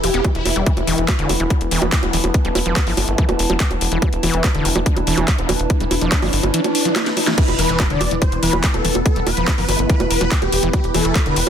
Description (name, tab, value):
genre	psychedelic trance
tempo	143 BPM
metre	4/4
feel	straight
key	E minor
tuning	A4 = 440 Hz
part	swarming rave lead	melody	0.0-0.6, 7.4-11.5 s	E4 to D5	-23 LUFS	left 1 dB	chorus, phaser, sidechain pumping, ping-pong delay
part	bubbling stepped-filter texture	sustained chords	0.0-11.5 s	E3 to E4	-26 LUFS	equal	chorus, built-in reverb, sidechain pumping
part	overdriven acid bass	riff	0.0-11.5 s	D3 to E4	-24 LUFS	moving between left 6 dB and right 4 dB	distortion, auto-pan, cassette tape, sidechain pumping, ping-pong delay
part	tight sequencer bass	bass	0.0-11.5 s	E1 to G1	-22 LUFS	equal	tube saturation
part	drum and bass drum kit	drums	0.0-11.5 s	bongos, crash cymbal, handclaps, hi-hat, snare drum	-21 LUFS	right 1 dB	overdrive
part	warbly tape-like pad	texture	0.0-11.5 s	E4 to B5	-26 LUFS	right 1 dB	chorus, built-in reverb, sidechain pumping
part	electronic kick drum	drums	0.2-11.2 s	none	-17 LUFS	equal	overdrive
part	vowel-sweep wobble bass	second line	2.0-10.1 s	A3 to D4	-33 LUFS	right 2 dB	none
part	riser and impact	sound effects	5.5-9.1 s	none	-28 LUFS	right 1 dB	none
room	little or no reverb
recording	dense, heavily limited modern master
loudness	-15 LUFS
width	side -8 dB against mid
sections	0.0-7.4 A section; 7.4-11.5 B section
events	riser 5.5-7.4; drum fill 7.0-7.4; band accent 7.3; drop 7.4-11.5; impact 7.4-9.1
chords	0.0 E5